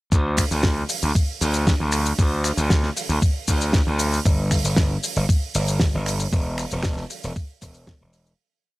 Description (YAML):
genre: nu-disco, nu disco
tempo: 116 BPM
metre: 4/4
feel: straight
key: unclear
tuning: A4 = 440 Hz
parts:
  - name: gritty slap bass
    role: bass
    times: 0.1-8.3 s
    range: E1 to D2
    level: -22 LUFS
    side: equal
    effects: overdrive, tube saturation
  - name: damped 70s drum kit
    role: drums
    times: 0.1-8.4 s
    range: finger snaps, hi-hat, shaker, snare drum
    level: -26 LUFS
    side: right 1 dB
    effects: none
  - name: electronic kick drum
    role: drums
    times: 0.1-8.0 s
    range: none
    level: -20 LUFS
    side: equal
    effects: none
room: little or no reverb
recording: dry, gritty hardware recording, transformer saturation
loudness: -19 LUFS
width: side -20 dB against mid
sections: 0.1-8.4 drop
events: drop 0.1-8.4; fade-out 5.6-8.4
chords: none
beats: | 0.12 0.64 1.15 1.67 | 2.19 2.71 3.22 3.74 | 4.26 4.78 5.29 5.81 | 6.33 6.84 7.36 7.88